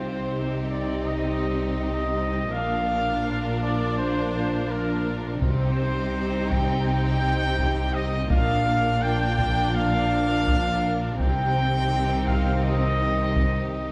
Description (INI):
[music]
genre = cinematic, epic orchestral film score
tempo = 83 BPM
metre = 4/4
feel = straight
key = C minor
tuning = A4 = 441 Hz
[part]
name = warm symphonic violin section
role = melody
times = 0.0-13.9 s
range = G4 to Bb4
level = -39 LUFS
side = equal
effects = none
[part]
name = rich symphonic violin section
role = second line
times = 0.0-13.9 s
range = Eb4 to F4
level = -40 LUFS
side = equal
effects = none
[part]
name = clear symphonic viola section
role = accompaniment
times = 0.0-13.9 s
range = C4 to D4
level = -36 LUFS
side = equal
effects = none
[part]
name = mellow French horn section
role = sustained chords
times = 0.0-13.9 s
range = Eb3 to Eb4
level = -34 LUFS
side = equal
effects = none
[part]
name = bright trumpet section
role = stabs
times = 0.0-13.9 s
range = Bb4 to G5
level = -30 LUFS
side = equal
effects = none
[part]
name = rich symphonic cello section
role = bass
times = 0.0-13.9 s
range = Bb2 to C3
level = -32 LUFS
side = equal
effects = none
[part]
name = rich symphonic double bass section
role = bass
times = 0.0-13.9 s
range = Bb1 to C2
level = -31 LUFS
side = equal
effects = none
[part]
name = timpani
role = percussion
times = 0.0-0.7 s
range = none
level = barely audible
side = none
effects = none
[part]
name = taiko ensemble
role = drums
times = 5.4-13.9 s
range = none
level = -29 LUFS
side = equal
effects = none
[sound]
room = moderate scoring stage reverb, RT60 2.0 s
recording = none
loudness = -24 LUFS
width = mono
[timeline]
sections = 0.0-13.9 A section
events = none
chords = 0.0 Cm; 2.5 Bb; 5.4 Cm; 8.3 Bb; 11.2 Cm